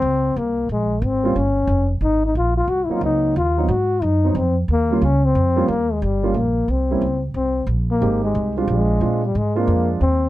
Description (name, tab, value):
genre	jazz, small-group swing and bop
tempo	180 BPM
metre	4/4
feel	swing 64% on 8ths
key	Eb mixolydian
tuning	A4 = 440 Hz
part	breathy trombone	melody	0.0-10.3 s	G3 to Gb4	-20 LUFS	left 3 dB	none
part	upright bass	bass	0.0-10.3 s	F1 to Bb2	-21 LUFS	right 1 dB	none
part	dark grand piano	accompaniment	1.2-10.0 s	Gb3 to G4	-23 LUFS	right 6 dB	none
room	light reverb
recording	dark, warm production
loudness	-17 LUFS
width	side -15 dB against mid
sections	0.0-10.3 A section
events	none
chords	0.0 Eb7(no3) (rootless); 0.7 Bbm7; 1.4 Db; 2.0 Ab9; 3.4 Ebm69; 4.7 Eb9; 6.0 Gm7b5; 6.7 C7b9; 7.3 Fm7 (rootless); 8.7 Bb9